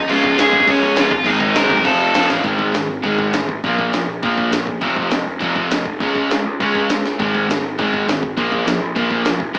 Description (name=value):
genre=punk rock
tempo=203 BPM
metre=4/4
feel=straight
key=Bb minor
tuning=A4 = 440 Hz
part: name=dark smooth lead guitar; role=melody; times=0.0-2.3 s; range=Db4 to Bb5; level=-18 LUFS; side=equal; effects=overdrive
part: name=fuzz picked electric bass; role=bass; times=0.0-9.6 s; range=E1 to Db2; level=-27 LUFS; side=equal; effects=overdrive
part: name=distorted electric guitar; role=riff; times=0.1-9.6 s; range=F2 to Db4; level=-25 LUFS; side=equal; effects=distortion
part: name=raw garage guitar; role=riff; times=0.1-9.6 s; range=F2 to F4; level=-22 LUFS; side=equal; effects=overdrive
part: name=house drum kit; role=drums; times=0.1-9.6 s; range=crash cymbal, hi-hat, kick drum, snare drum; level=-25 LUFS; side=equal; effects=none
room=moderate stone room reverb, RT60 1.0 s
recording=band playing live in one room, AM radio sound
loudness=-17 LUFS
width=mono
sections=0.0-2.4 A section; 2.4-9.6 B section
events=drum fill 2.3, 7.0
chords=0.0 Db; 1.1 Ab; 1.9 F; 2.4 Ab5; 3.6 Bb5; 4.8 F; 6.0 Db5; 7.2 Ab5; 8.4 Bb5